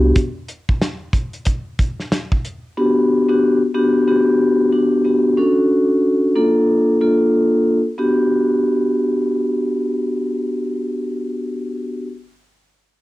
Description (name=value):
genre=hip hop, boom-bap hip-hop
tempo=92 BPM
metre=4/4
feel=swing 62% on 16ths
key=unclear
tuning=A4 = 441 Hz
part: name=vibraphone with soft mallets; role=accompaniment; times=0.0-12.1 s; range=A#3 to A4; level=-15 LUFS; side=equal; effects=high-pass filter, low-pass filter, cassette tape
part: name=warm soul drum kit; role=drums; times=0.2-2.6 s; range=hi-hat, kick drum, snare drum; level=-18 LUFS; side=equal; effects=cassette tape
room=light reverb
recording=home recording on cassette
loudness=-15 LUFS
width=side -17 dB against mid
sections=0.0-8.0 A section; 8.0-10.6 B section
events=break 0.2-2.8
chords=0.2 N.C.; 2.8 Gmaj7/B; 5.4 Dmaj7/C#; 6.4 A#maj7; 8.0 Gmaj7/B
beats=| 0.16 0.81 1.46 2.11 | 2.77 3.42 4.07 4.72 | 5.38 6.03 6.68 7.33 | 7.98 8.64 9.29 9.94